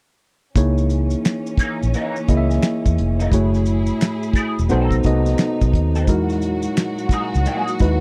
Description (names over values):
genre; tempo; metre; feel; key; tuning
R&B, neo-soul; 87 BPM; 4/4; swing 63% on 16ths; C# dorian; A4 = 439 Hz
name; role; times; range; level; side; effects
warm studio string section; sustained chords; 0.5-8.0 s; A2 to G#4; -32 LUFS; equal; none
tine electric piano; accompaniment; 0.6-8.0 s; G#3 to E5; -24 LUFS; equal; none
vintage muted fingered electric bass; bass; 0.6-8.0 s; E1 to E2; -21 LUFS; equal; none
cloth-damped thuddy drum kit; drums; 0.6-8.0 s; finger snaps, hi-hat, kick drum, snare drum; -21 LUFS; equal; none
maracas and finger snaps; percussion; 0.6-8.0 s; none; -40 LUFS; equal; none
electric guitar at the edge of break-up; second line; 1.6-7.7 s; E3 to A4; -28 LUFS; equal; wah, ensemble chorus
room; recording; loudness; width
little or no reverb; dry, close 1970s-style studio recording; -19 LUFS; mono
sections
0.6-8.0 A section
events
none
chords
0.6 C#m69; 3.3 F#m9; 4.7 B7b9; 6.1 Emaj9#11